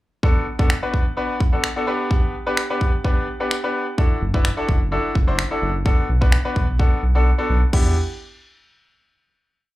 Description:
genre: dance-pop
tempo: 128 BPM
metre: 4/4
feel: straight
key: E minor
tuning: A4 = 443 Hz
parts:
  - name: bright concert grand piano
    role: accompaniment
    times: 0.2-7.9 s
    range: B3 to C5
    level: -23 LUFS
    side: left 1 dB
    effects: sidechain pumping, slapback echo
  - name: pop drum kit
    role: drums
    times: 0.2-7.8 s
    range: crash cymbal, finger snaps, kick drum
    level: -19 LUFS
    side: equal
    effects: none
  - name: round analog bass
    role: bass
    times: 4.2-8.0 s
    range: F#1 to E2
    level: -19 LUFS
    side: equal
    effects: sidechain pumping
room: little or no reverb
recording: live gig heard through the venue's PA, club reverb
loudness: -17 LUFS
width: side -17 dB against mid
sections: 0.2-7.7 verse; 7.7-9.6 final chord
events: silent gap 7.3-7.7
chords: 0.2 Bm7; 1.9 G; 4.0 Dadd9/F#; 5.9 Bm7; 7.7 Em7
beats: | 0.23 0.70 1.17 1.64 | 2.11 2.58 3.04 3.51 | 3.98 4.45 4.92 5.39 | 5.86 6.33 6.79 7.26 | 7.73

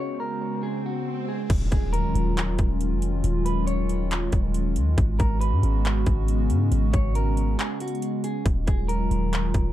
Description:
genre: hip hop, atmospheric cloud-rap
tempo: 138 BPM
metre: 4/4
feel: half-time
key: Eb minor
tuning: A4 = 441 Hz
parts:
  - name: clean electric guitar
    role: melody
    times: 0.0-9.7 s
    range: Gb4 to Db5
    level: -34 LUFS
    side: right 1 dB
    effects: low-pass filter, digital delay
  - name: hollow soft pad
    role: sustained chords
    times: 0.0-9.7 s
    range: Db3 to Gb4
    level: -28 LUFS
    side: equal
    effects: chorus, sidechain pumping
  - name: swell and impact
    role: sound effects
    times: 0.3-3.2 s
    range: none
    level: -36 LUFS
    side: equal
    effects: none
  - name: warm 808-style bass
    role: bass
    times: 1.5-9.7 s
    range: Eb1 to Ab2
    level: -23 LUFS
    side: equal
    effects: none
  - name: trap drum kit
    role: drums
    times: 1.5-9.6 s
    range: crash cymbal, handclaps, hi-hat, kick drum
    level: -26 LUFS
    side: equal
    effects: overdrive
room: little or no reverb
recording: dark, warm production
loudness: -22 LUFS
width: side -13 dB against mid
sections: 0.0-1.5 A section; 1.5-9.7 B section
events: swell 0.3-1.5; impact 1.5-3.2; break 7.6-8.5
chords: 0.0 Abm11; 1.5 Ebm11; 5.0 Abm11; 8.5 Ebm11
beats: 0.20 0.63 1.06 | 1.50 1.93 2.37 2.80 | 3.24 3.67 4.11 4.54 | 4.98 5.41 5.85 6.28 | 6.72 7.15 7.59 8.02 | 8.46 8.89 9.33

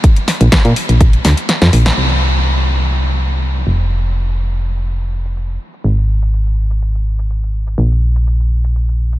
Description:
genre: piano house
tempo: 124 BPM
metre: 4/4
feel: straight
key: unclear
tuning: A4 = 440 Hz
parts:
  - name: electronic kick drum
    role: drums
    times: 0.0-1.1 s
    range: none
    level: -9 LUFS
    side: equal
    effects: none
  - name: house drum kit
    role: drums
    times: 0.0-9.2 s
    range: cabasa, hi-hat, snare drum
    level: -17 LUFS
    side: equal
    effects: low-pass filter on hats, low-pass filter on snare, low-pass filter on perc
  - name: solid FM bass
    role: bass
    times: 0.4-9.2 s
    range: F1 to Bb2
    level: -13 LUFS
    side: equal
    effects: tube saturation, sidechain pumping
room: light reverb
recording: none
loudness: -12 LUFS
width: side -16 dB against mid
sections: 0.0-2.0 A section; 2.0-9.2 B section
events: drum fill 1.2-2.0; kick drops out 1.5-2.0; band accent 1.9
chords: none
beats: | 0.04 0.52 1.01 1.49 | 1.97 2.46 2.94 3.42 | 3.91 4.39 4.88 5.36 | 5.84 6.33 6.81 7.30 | 7.78 8.26 8.75

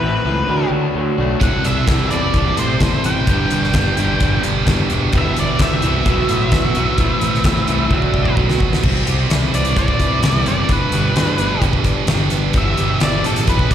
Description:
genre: quiet-loud alternative rock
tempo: 129 BPM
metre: 4/4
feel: straight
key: unclear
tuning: A4 = 439 Hz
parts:
  - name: octave-fuzz lead guitar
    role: melody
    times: 0.0-13.7 s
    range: A4 to G5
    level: -22 LUFS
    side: left 2 dB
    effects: distortion, plate reverb, slapback echo, tape echo
  - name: electric guitar through a small old amp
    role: arpeggios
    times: 0.0-13.7 s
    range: G2 to A4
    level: -24 LUFS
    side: right 3 dB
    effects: plate reverb, slapback echo, tape echo
  - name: overdriven electric guitar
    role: riff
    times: 0.0-13.7 s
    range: E2 to D4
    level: -24 LUFS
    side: left 9 dB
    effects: none
  - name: fuzz fingered electric bass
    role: bass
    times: 0.0-13.7 s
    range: E1 to A2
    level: -20 LUFS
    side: equal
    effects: overdrive
  - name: scooped high-gain guitar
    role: riff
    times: 1.4-13.7 s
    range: E2 to D4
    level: -22 LUFS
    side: right 11 dB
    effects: distortion, slapback echo
  - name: huge arena drum kit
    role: drums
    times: 1.4-13.7 s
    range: crash cymbal, hi-hat, kick drum, snare drum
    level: -18 LUFS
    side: equal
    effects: none
room: light reverb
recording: live gig heard through the venue's PA, recital hall reverb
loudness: -14 LUFS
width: side -10 dB against mid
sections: 0.0-8.8 A section; 8.8-13.7 B section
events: drum fill 7.9-8.8; lead electric guitar solo 8.8-13.7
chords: 0.5 D; 1.4 C6; 3.3 G; 5.1 Em/G; 6.1 Bsus4; 7.0 Amadd9; 7.9 D; 8.4 Bm; 8.8 C6; 10.7 G; 12.6 Em/G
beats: 0.02 0.49 0.95 | 1.42 1.88 2.35 2.81 | 3.28 3.74 4.21 4.67 | 5.13 5.60 6.06 6.53 | 6.99 7.46 7.92 8.38 | 8.85 9.31 9.78 10.24 | 10.71 11.17 11.63 12.10 | 12.56 13.03 13.49

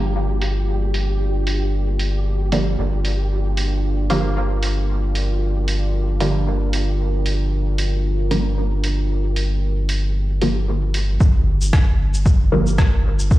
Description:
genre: dub techno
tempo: 114 BPM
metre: 4/4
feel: swing 55% on 16ths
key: G minor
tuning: A4 = 440 Hz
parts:
  - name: deep dark ambient pad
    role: sustained chords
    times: 0.0-13.4 s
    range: Bb3 to Bb4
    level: -29 LUFS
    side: right 1 dB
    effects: chorus, built-in reverb, sidechain pumping
  - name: filtered dub chord stab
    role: stabs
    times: 0.0-12.7 s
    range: D3 to Bb3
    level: -23 LUFS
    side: right 1 dB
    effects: chorus, phaser, cassette tape, sidechain pumping, dub echo
  - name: warm sub bass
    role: bass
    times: 0.0-13.4 s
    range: G1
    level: -20 LUFS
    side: equal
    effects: tube saturation, sidechain pumping
  - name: flickering grainy texture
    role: texture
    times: 0.0-11.2 s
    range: G4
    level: -35 LUFS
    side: right 3 dB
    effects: built-in reverb, sidechain pumping
  - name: lo-fi sampler-style drum kit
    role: drums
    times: 0.4-13.4 s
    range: hi-hat, rim click, shaker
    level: -28 LUFS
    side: right 1 dB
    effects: overdrive, low-pass filter on hats, low-pass filter on perc, low-pass filter on snare
  - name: electronic kick drum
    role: drums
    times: 11.2-13.4 s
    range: none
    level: -15 LUFS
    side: equal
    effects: none
room: little or no reverb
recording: played on a big sound system in a bare room, large studio reverb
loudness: -17 LUFS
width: side -16 dB against mid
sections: 0.0-11.2 A section; 11.2-13.4 B section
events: none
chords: 0.0 Gm7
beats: 0.15 | 0.68 1.21 1.73 2.26 | 2.78 3.31 3.84 4.36 | 4.89 5.42 5.94 6.47 | 6.99 7.52 8.05 8.57 | 9.10 9.63 10.15 10.68 | 11.21 11.73 12.26 12.78 | 13.31

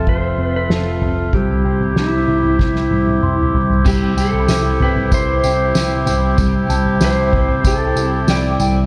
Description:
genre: dream pop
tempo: 95 BPM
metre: 4/4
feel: straight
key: C major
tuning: A4 = 440 Hz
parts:
  - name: clean lap steel guitar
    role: melody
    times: 0.0-8.9 s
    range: E4 to D5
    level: -24 LUFS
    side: equal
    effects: diffuse ambient delay
  - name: warm woodwind section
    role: sustained chords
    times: 0.0-8.9 s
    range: C3 to G4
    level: -24 LUFS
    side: equal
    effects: none
  - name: mellow electric guitar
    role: arpeggios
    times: 0.0-8.9 s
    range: F3 to A4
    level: -24 LUFS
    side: equal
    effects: ensemble chorus, diffuse ambient delay
  - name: vintage muted picked electric bass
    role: bass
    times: 0.0-8.9 s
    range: F1 to C2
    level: -23 LUFS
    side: equal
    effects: none
  - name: soft-mallet drum kit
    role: drums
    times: 0.1-8.7 s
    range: crash cymbal, kick drum, snare drum, tambourine, toms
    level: -22 LUFS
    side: equal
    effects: none
  - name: small celesta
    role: texture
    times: 1.0-8.9 s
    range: G5 to C6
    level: -32 LUFS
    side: equal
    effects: diffuse ambient delay
  - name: electric guitar at the edge of break-up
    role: accompaniment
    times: 3.8-8.9 s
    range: C3 to G4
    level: -27 LUFS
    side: equal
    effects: tremolo, ensemble chorus
room: wet lush hall reverb, RT60 3.0 s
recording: dreamy mix soaked in reverb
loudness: -16 LUFS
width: mono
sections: 0.0-3.9 A section; 3.9-8.9 B section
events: drum fill 2.6-3.9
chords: 0.0 F; 1.3 C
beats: 0.07 0.70 | 1.33 1.97 2.60 3.23 | 3.86 4.49 5.12 5.75 | 6.39 7.02 7.65 8.28

